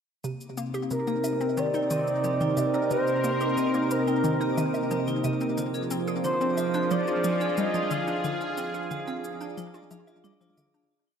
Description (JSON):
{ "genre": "ambient, sequencer-driven space music", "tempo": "90 BPM", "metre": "4/4", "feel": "straight", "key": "C minor", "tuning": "A4 = 440 Hz", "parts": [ { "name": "sweeping resonant pad", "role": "sustained chords", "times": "0.5-10.9 s", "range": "C3 to Bb4", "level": "-28 LUFS", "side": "equal", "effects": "chorus" }, { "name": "vibraphone with hard mallets", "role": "arpeggios", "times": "0.2-10.9 s", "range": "Bb3 to F5", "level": "-36 LUFS", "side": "moving between left 4 dB and right 6 dB", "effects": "auto-pan, tape echo" }, { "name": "hollow square pluck", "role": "riff", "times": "0.2-10.8 s", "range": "C3 to Ab4", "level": "-32 LUFS", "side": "equal", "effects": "chorus, tape echo" }, { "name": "shaker and woodblock", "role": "percussion", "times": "0.2-10.9 s", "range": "none", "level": "-42 LUFS", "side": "left 2 dB", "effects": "overdrive, tape echo" }, { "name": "twinkling granular texture", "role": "texture", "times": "0.7-10.9 s", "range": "Eb4 to D6", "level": "-42 LUFS", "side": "equal", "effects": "built-in reverb" }, { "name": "expressive portamento lead", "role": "melody", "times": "0.9-10.2 s", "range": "Bb4 to F5", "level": "-29 LUFS", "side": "equal", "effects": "chorus, tape echo" } ], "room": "wet plate reverb, RT60 3.3 s", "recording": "dreamy mix soaked in reverb", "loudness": "-24 LUFS", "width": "side -7 dB against mid", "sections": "0.2-10.9 A section", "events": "fade-in on vibraphone 0.2-10.9; fade-in on synth texture 0.2-10.9; fade-out 7.4-10.9", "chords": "0.2 Cm7; 5.6 Ddim", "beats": "| 0.24 0.91 1.58 2.24 | 2.91 3.58 4.24 4.91 | 5.58 6.24 6.91 7.58 | 8.24 8.91 9.58 10.24" }